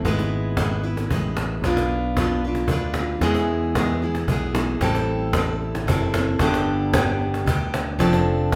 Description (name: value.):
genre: acoustic folk duo or small band.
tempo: 113 BPM.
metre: 3/4.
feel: straight.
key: unclear.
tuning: A4 = 440 Hz.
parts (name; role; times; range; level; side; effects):
picked steel-string acoustic guitar; accompaniment; 0.0-8.6 s; E2 to B4; -26 LUFS; equal; none.
fingered electric bass; bass; 0.0-8.6 s; F1 to E2; -28 LUFS; equal; none.
cajon; percussion; 0.1-8.6 s; none; -27 LUFS; equal; none.
room: moderate large studio reverb, RT60 0.8 s.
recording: none.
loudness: -22 LUFS.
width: mono.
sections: 0.0-8.6 A section.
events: none.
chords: 0.0 E/G#; 1.6 Bdim; 3.2 E; 4.8 Am7; 6.4 G; 8.0 F6.